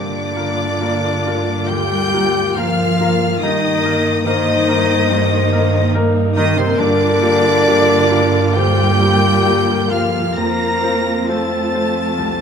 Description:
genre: cinematic.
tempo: 64-72 BPM.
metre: 4/4.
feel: rubato.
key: G minor.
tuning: A4 = 438 Hz.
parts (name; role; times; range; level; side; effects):
rich symphonic violin section; melody; 0.0-12.4 s; C6 to Bb6; -24 LUFS; left 1 dB; none.
bright silver concert flute; second line; 0.0-12.4 s; C5 to Bb5; -24 LUFS; left 1 dB; none.
mellow clarinet; second line; 0.0-12.4 s; C4 to Bb4; -23 LUFS; left 1 dB; none.
warm studio violin section; second line; 0.0-12.4 s; C5 to Bb5; -25 LUFS; left 2 dB; none.
bright grand piano; accompaniment; 0.0-12.4 s; C2 to C5; -23 LUFS; left 3 dB; none.
warm studio viola section; accompaniment; 0.0-12.4 s; Bb3 to F4; -23 LUFS; right 2 dB; none.
rich symphonic cello section; bass; 0.0-12.4 s; C3 to Bb3; -23 LUFS; right 3 dB; none.
warm symphonic double bass section; bass; 0.0-12.4 s; F2 to G2; -21 LUFS; right 3 dB; none.
mellow French horn section; sustained chords; 1.7-12.4 s; G4 to C5; -20 LUFS; left 3 dB; none.
room: light reverb.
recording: close, detailed microphones.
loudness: -13 LUFS.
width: side -7 dB against mid.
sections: 0.0-12.4 A section.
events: none.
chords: 0.0 Gm7; 3.4 Eb/G; 6.8 Gm7; 10.4 F.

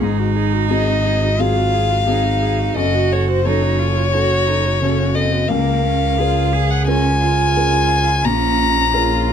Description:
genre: neoclassical piano and strings.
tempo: 88 BPM.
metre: 4/4.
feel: rubato.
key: Db major.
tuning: A4 = 439 Hz.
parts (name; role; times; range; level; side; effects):
rich cello; second line; 0.0-9.3 s; Bb3 to Ab4; -23 LUFS; right 11 dB; none.
dark viola; accompaniment; 0.0-9.3 s; F4 to Bb4; -27 LUFS; right 6 dB; none.
felt-muted upright piano; accompaniment; 0.0-9.3 s; Db2 to Bb4; -22 LUFS; left 3 dB; none.
rich double bass; bass; 0.0-9.3 s; Gb1 to Db2; -19 LUFS; right 1 dB; none.
dark violin; melody; 0.7-9.3 s; C5 to Bb5; -19 LUFS; left 4 dB; none.
room: little or no reverb.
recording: close, detailed microphones.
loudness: -14 LUFS.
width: side -8 dB against mid.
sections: 0.0-9.3 A section.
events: none.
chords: 0.0 Ab7; 2.8 Gbm; 5.5 Db6; 8.3 Bbm7.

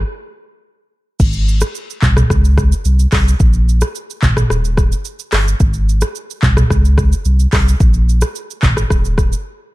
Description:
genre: afrobeats.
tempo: 109 BPM.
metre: 4/4.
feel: straight.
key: Ab major.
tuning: A4 = 438 Hz.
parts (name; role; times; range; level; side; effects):
warm sub bass; bass; 0.0-9.3 s; Eb1 to Db2; -13 LUFS; equal; none.
afro-pop drum kit; drums; 1.2-9.4 s; crash cymbal, handclaps, hi-hat, kick drum, rim click, shaker, toms; -15 LUFS; equal; none.
room: digital ambience.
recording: dark, warm production.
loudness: -12 LUFS.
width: side -19 dB against mid.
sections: 0.0-1.2 A section; 1.2-9.7 B section.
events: break 0.1-1.2, 9.5.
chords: none.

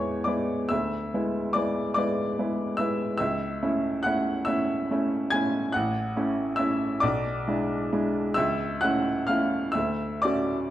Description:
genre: classical, romantic nocturne for solo piano.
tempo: 40-49 BPM (dotted quarters).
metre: 12/8.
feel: rubato.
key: A major.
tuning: A4 = 441 Hz.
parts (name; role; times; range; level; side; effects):
clear upright piano; solo; 0.0-10.7 s; A1 to G#6; -24 LUFS; equal; none.
room: wet recital hall reverb, RT60 1.7 s.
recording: dark, warm production.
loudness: -24 LUFS.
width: side -13 dB against mid.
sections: 0.0-10.7 A section.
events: none.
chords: 0.0 E; 0.7 E7/D; 3.2 A/C#; 5.7 A; 7.0 E7/B; 8.4 A/C#; 9.8 Dmaj7.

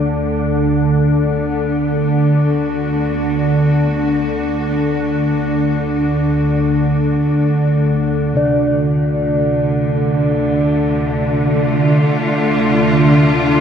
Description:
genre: dark ambient drone.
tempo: free time.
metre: none.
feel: none.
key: unclear.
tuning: A4 = 440 Hz.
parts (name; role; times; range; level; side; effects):
rich studio cello section; sustained chords; 0.0-13.6 s; D3 to F#4; -22 LUFS; left 2 dB; none.
organ-like drone; drone; 0.0-13.6 s; D2 to D3; -14 LUFS; equal; ensemble chorus, built-in reverb.
bronze singing bowl; texture; 0.0-13.6 s; A3 to D5; -23 LUFS; equal; none.
bronze singing bowl; arpeggios; 8.3-13.6 s; C3; -22 LUFS; equal; tape echo.
room: wet cathedral reverb, RT60 5.4 s.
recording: in a vast, echoing space.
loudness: -13 LUFS.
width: side -8 dB against mid.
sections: 0.0-8.3 A section; 8.3-13.6 B section.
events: fade-out on cello section 0.0-8.3.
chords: 0.0 Bm; 8.3 Dm.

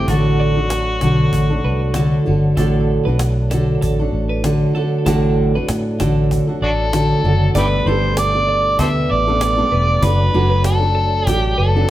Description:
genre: acoustic pop.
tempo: 96 BPM.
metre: 4/4.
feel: swing 55% on 16ths.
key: unclear.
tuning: A4 = 440 Hz.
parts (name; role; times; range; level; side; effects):
overdriven harmonica; melody; 0.0-2.3, 6.6-11.9 s; D4 to E5; -19 LUFS; equal; none.
fingerpicked steel-string acoustic guitar; accompaniment; 0.0-11.9 s; A2 to A4; -18 LUFS; equal; none.
percussive tonewheel organ; sustained chords; 0.0-11.9 s; B2 to D4; -27 LUFS; right 1 dB; chorus vibrato, slow rotary speaker.
vintage muted fingered electric bass; bass; 0.0-11.8 s; E1 to A2; -18 LUFS; equal; none.
cajon; drums; 0.1-11.4 s; none; -26 LUFS; equal; none.
twelve-string electric guitar; arpeggios; 0.4-11.7 s; A4 to B5; -28 LUFS; right 1 dB; digital delay.
room: wet stone room reverb, RT60 1.2 s.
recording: band playing live in one room.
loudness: -14 LUFS.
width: side -14 dB against mid.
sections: 0.0-2.6 A section; 2.6-7.6 B section; 7.6-11.9 C section.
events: none.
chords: 0.1 D/A; 7.6 Gadd9; 10.0 D/F#.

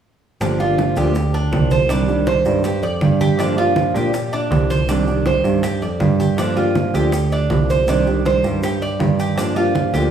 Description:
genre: latin, Cuban son and guajira.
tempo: 160 BPM.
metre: 4/4.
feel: straight.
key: G minor.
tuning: A4 = 439 Hz.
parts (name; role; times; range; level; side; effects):
nylon-string guitar; accompaniment; 0.4-10.1 s; C3 to G4; -21 LUFS; equal; none.
Cuban tres; arpeggios; 0.4-10.1 s; D4 to D5; -21 LUFS; right 5 dB; none.
picked electric bass; bass; 0.4-10.1 s; G1 to Bb2; -20 LUFS; right 2 dB; none.
bongos; percussion; 0.4-9.9 s; none; -29 LUFS; left 2 dB; none.
congas; percussion; 0.4-10.1 s; none; -23 LUFS; right 2 dB; none.
maracas; percussion; 0.4-10.1 s; none; -41 LUFS; right 1 dB; none.
room: wet recital hall reverb, RT60 1.5 s.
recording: recorded in a church or concert hall, studio reverb.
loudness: -15 LUFS.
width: side -8 dB against mid.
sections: 0.4-10.1 A section.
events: none.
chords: 0.4 Gm7; 1.9 Cmadd9; 3.4 Gm7; 4.9 Cmadd9; 6.4 Gm7; 7.9 Cmadd9; 9.4 Gm7.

